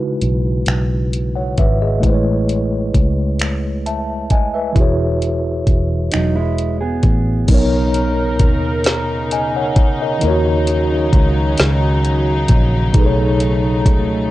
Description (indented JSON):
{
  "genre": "slow six-eight R&B",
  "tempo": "44 BPM (dotted quarters)",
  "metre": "6/8",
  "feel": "straight",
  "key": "B major from 7.5 s",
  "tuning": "A4 = 440 Hz",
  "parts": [
    { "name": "mellow tine electric piano", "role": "accompaniment", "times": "0.0-14.3 s", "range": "B2 to A5", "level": "-19 LUFS", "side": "equal", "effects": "medium stereo tremolo" },
    { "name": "vintage muted fingered electric bass", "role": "bass", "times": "0.0-14.3 s", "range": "E1 to D#2", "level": "-18 LUFS", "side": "equal", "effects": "tube saturation" },
    { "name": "smooth R&B drum kit", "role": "drums", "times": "0.2-14.1 s", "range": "crash cymbal, finger snaps, hi-hat, kick drum, snare drum", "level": "-15 LUFS", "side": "equal", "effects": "vintage 12-bit sampler grit" },
    { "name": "mellow electric guitar", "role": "second line", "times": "6.1-7.5 s", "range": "F#3 to G#4", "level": "-20 LUFS", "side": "right 3 dB", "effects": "none" },
    { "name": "warm studio string section", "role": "sustained chords", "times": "7.5-14.3 s", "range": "C#3 to A#4", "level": "-21 LUFS", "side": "equal", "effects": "none" }
  ],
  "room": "little or no reverb",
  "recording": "dry, gritty hardware recording",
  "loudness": "-14 LUFS",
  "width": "side -16 dB against mid",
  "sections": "0.0-7.5 A section; 7.5-14.3 B section",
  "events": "none",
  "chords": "0.0 C#m11; 2.0 Amaj9; 4.8 E6; 7.5 Bmaj9; 10.2 D#m7; 12.9 B13",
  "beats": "0.67 | 2.04 3.40 | 4.76 6.13 | 7.49 8.85 | 10.22 11.58 | 12.95"
}